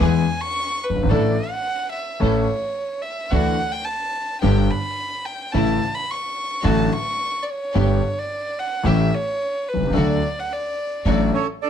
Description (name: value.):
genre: tango.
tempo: 108 BPM.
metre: 4/4.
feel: rubato.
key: D major.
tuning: A4 = 442 Hz.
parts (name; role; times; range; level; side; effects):
dark violin; second line; 0.0-11.7 s; C#4 to C#6; -25 LUFS; right 1 dB; none.
warm concert grand piano; accompaniment; 0.0-11.3 s; F#1 to A4; -20 LUFS; left 3 dB; none.
rich symphonic string section; stabs; 0.0-11.3 s; A3 to A4; -30 LUFS; equal; none.
upright bass; bass; 0.0-11.3 s; F#1 to E2; -22 LUFS; right 2 dB; none.
bandoneon; melody; 11.3-11.7 s; A4 to D5; -22 LUFS; right 10 dB; none.
room: moderate studio reverb, RT60 0.6 s.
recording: dark, warm production.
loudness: -19 LUFS.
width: side -9 dB against mid.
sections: 0.0-11.7 A section.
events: violin solo 0.0-11.7.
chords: 0.0 E; 1.1 Asus4; 2.2 A; 3.3 Dadd9; 4.4 G; 5.5 A; 6.7 D/A; 7.8 G; 8.9 A7; 10.0 D.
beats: 0.00 0.55 | 1.10 1.66 2.21 2.77 | 3.32 3.88 4.44 4.99 | 5.55 6.10 6.65 7.21 | 7.76 8.31 8.86 9.41 | 9.96 10.51 11.06 11.62.